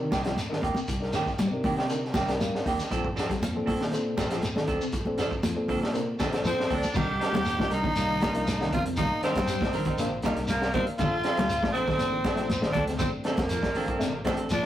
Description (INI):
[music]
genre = afrobeat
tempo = 119 BPM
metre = 4/4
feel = straight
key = C dorian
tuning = A4 = 436 Hz
[part]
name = reed electric piano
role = accompaniment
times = 0.0-14.5 s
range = A3 to G5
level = -34 LUFS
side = left 2 dB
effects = spring reverb
[part]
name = electric guitar at the edge of break-up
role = arpeggios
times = 0.0-14.6 s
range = C3 to G3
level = -35 LUFS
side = left 2 dB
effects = tremolo
[part]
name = fingered electric bass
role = bass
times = 0.0-14.7 s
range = A1 to C3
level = -34 LUFS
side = equal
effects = none
[part]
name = semi-hollow electric guitar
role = stabs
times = 0.1-14.5 s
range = Eb3 to Bb4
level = -33 LUFS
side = right 3 dB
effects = spring reverb
[part]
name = crunchy breakbeat drum kit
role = drums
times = 0.1-14.7 s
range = crash cymbal, hi-hat, kick drum, snare drum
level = -32 LUFS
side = equal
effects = none
[part]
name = congas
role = percussion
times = 0.1-14.6 s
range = none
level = -31 LUFS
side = right 1 dB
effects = none
[part]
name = shekere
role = percussion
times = 0.1-14.6 s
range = none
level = -37 LUFS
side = left 1 dB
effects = none
[part]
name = growling tenor saxophone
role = melody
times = 6.5-14.7 s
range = Bb3 to G4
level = -30 LUFS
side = left 1 dB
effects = none
[part]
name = bright alto saxophone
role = second line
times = 6.5-14.7 s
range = Bb3 to G4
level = -34 LUFS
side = right 2 dB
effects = none
[sound]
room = moderate small room reverb, RT60 0.5 s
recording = rough rehearsal-room recording, warm saturation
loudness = -25 LUFS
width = side -12 dB against mid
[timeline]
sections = 0.0-7.0 A section; 7.0-14.7 B section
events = reed electric piano fill 2.2-2.9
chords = 0.0 Cm9; 2.9 Bbmaj9; 7.0 Cm9; 11.0 Bbmaj9